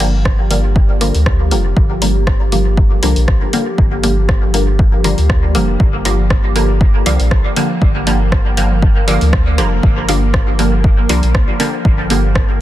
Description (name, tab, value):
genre	dub techno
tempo	119 BPM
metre	4/4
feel	swing 54% on 16ths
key	G minor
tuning	A4 = 441 Hz
part	warbly tape-like pad	sustained chords	0.0-12.6 s	F3 to Bb4	-23 LUFS	equal	chorus, built-in reverb, sidechain pumping
part	filtered dub chord stab	stabs	0.0-12.2 s	D3 to Bb3	-18 LUFS	equal	chorus, phaser, sidechain pumping, dub echo
part	warm sub bass	bass	0.0-12.6 s	F1 to D2	-15 LUFS	equal	sidechain pumping
part	punchy analog drum machine	drums	0.0-12.5 s	hi-hat, rim click	-22 LUFS	equal	soft clipping on snare, dub echo
part	electronic kick drum	drums	0.3-12.5 s	none	-13 LUFS	equal	none
room	digital ambience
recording	dense, heavily limited modern master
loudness	-11 LUFS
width	side -14 dB against mid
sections	0.0-12.6 A section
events	none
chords	0.0 Gm7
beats	0.25 0.76 1.26 | 1.77 2.27 2.77 3.28 | 3.78 4.29 4.79 5.30 | 5.80 6.30 6.81 7.31 | 7.82 8.32 8.82 9.33 | 9.83 10.34 10.84 11.35 | 11.85 12.36